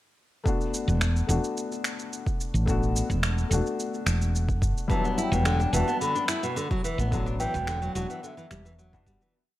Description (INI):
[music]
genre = organic downtempo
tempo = 108 BPM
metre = 4/4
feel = straight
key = unclear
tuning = A4 = 440 Hz
[part]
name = felt-muted upright piano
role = accompaniment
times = 0.4-9.4 s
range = F#3 to F#4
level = -32 LUFS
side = left 4 dB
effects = sidechain pumping, digital delay
[part]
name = electronic kick drum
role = drums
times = 0.5-9.2 s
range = none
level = -29 LUFS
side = equal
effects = studio reverb
[part]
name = electronic shaker and finger snaps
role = drums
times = 0.5-9.3 s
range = none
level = -33 LUFS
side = right 1 dB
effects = studio reverb
[part]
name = woody fretless electric bass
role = bass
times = 0.9-9.2 s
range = E1 to A1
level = -25 LUFS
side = equal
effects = sidechain pumping
[part]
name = breathy mellow bansuri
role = melody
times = 4.9-9.0 s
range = E5 to B5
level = -31 LUFS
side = left 1 dB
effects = digital delay
[part]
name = nylon-string guitar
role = arpeggios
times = 4.9-9.3 s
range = B2 to E4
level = -31 LUFS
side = right 1 dB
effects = digital delay
[sound]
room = light reverb, studio ambience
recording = none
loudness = -24 LUFS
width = side -15 dB against mid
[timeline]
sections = 0.5-9.3 groove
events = fade-out 6.4-9.3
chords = 0.5 Gmaj7/E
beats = | 0.46 1.01 1.57 2.12 | 2.68 3.23 3.79 4.34 | 4.90 5.46 6.01 6.57 | 7.12 7.68 8.23 8.79